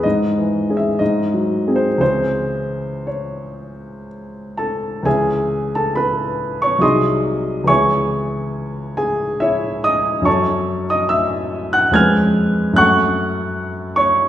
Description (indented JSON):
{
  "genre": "classical, romantic character piece for solo piano",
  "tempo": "56-76 BPM",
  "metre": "3/4",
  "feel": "rubato",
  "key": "C# minor",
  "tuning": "A4 = 440 Hz",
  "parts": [
    { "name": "warm grand piano", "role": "solo", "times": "0.0-14.3 s", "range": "B#1 to G#6", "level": "-16 LUFS", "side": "equal", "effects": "none" }
  ],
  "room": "wet recital hall reverb, RT60 1.6 s",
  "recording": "heard from further back in the room",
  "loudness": "-15 LUFS",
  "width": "side -11 dB against mid",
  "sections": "0.0-5.1 A section; 5.1-14.3 B section",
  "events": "none",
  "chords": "0.0 C#m/G#; 1.0 G#7; 2.0 C#m; 6.8 G#7/B#; 7.7 C#m; 10.3 F#m; 11.9 C#7/E#; 12.8 F#m"
}